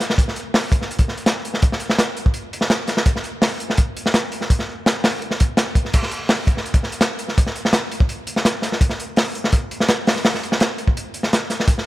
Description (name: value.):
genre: drum and bass.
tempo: 167 BPM.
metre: 4/4.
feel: straight.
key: none.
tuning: none.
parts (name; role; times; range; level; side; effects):
crunchy breakbeat drum kit; drums; 0.0-11.9 s; crash cymbal, hi-hat, kick drum, snare drum; -17 LUFS; equal; none.
room: light reverb.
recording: none.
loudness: -17 LUFS.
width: side -16 dB against mid.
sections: 0.0-5.9 A section; 5.9-11.9 A section.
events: drop 0.0-5.9, 5.9-11.9.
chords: none.